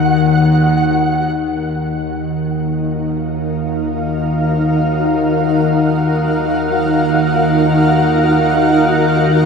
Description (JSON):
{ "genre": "ambient", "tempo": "free time", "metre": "none", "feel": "none", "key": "Eb minor", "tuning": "A4 = 440 Hz", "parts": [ { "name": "bowed-like drone", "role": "drone", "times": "0.0-9.5 s", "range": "Eb2 to Eb3", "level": "-16 LUFS", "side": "left 1 dB", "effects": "built-in reverb" }, { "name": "flickering grainy texture", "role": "texture", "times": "0.0-9.5 s", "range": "Gb4 to Gb5", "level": "-23 LUFS", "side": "equal", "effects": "built-in reverb" }, { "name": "granular cloud pad", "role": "sustained chords", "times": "2.7-9.5 s", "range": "Eb4 to Gb5", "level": "-15 LUFS", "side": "right 1 dB", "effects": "built-in reverb" } ], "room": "wet huge ambient reverb, RT60 7.7 s", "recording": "in a vast, echoing space", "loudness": "-13 LUFS", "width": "side -5 dB against mid", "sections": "0.0-1.4 A section; 1.4-9.5 B section", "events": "fade-in on synth texture 1.4-9.5", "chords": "0.0 Ebm; 1.4 Ebmadd9" }